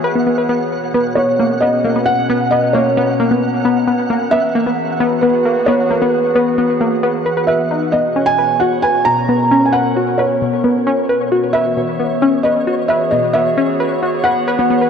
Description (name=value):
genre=IDM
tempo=133 BPM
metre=4/4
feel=straight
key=unclear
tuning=A4 = 436 Hz
part: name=felt-muted upright piano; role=melody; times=0.0-14.9 s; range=B4 to A#5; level=-17 LUFS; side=right 1 dB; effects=ping-pong delay
part: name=warbly tape-like pad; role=sustained chords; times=0.0-14.9 s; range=B2 to A#5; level=-20 LUFS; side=equal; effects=chorus, built-in reverb
part: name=warbly dusty pluck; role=arpeggios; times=0.0-14.9 s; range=B2 to B4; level=-17 LUFS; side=left 2 dB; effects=chorus, ping-pong delay
part: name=flickering grainy texture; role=texture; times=0.0-14.9 s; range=C#5 to F#5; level=-27 LUFS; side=right 2 dB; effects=built-in reverb
room=moderate huge ambient reverb, RT60 3.9 s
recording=none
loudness=-13 LUFS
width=side -7 dB against mid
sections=0.0-7.9 A section; 7.9-14.9 A section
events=none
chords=0.0 Eadd9; 0.7 Bmaj7sus2; 4.1 Eadd9; 7.9 Bsus2; 11.3 Eadd9